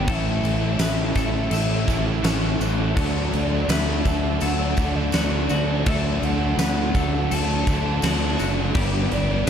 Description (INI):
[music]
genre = rock, shoegaze and dream pop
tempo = 83 BPM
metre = 4/4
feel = straight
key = D major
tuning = A4 = 438 Hz
[part]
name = pure breathy sine lead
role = melody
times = 0.0-9.5 s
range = D5 to A5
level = -31 LUFS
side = equal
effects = chorus, digital delay
[part]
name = twangy electric guitar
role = arpeggios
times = 0.0-9.5 s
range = F#4 to B4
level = -33 LUFS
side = left 8 dB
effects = lush chorus, digital delay
[part]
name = overdriven electric guitar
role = riff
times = 0.0-9.5 s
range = G2 to E4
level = -30 LUFS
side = left 12 dB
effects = ensemble chorus
[part]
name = overdriven electric guitar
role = riff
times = 0.0-9.5 s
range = G2 to E4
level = -29 LUFS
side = equal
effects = none
[part]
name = overdriven semi-hollow guitar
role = riff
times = 0.0-9.5 s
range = A2 to B4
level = -29 LUFS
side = right 12 dB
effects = reverse reverb
[part]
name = growling fingered electric bass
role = bass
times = 0.0-9.5 s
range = F#1 to D2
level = -24 LUFS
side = equal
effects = overdrive
[part]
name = huge arena drum kit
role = drums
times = 0.1-9.5 s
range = crash cymbal, kick drum, snare drum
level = -25 LUFS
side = equal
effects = none
[part]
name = tambourine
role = percussion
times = 0.1-9.2 s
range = none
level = -39 LUFS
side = right 12 dB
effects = none
[sound]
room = small room ambience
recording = dark, warm production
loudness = -19 LUFS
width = side -8 dB against mid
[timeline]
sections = 0.0-9.5 A section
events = none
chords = 0.1 Aadd9; 3.0 Dadd9; 8.8 G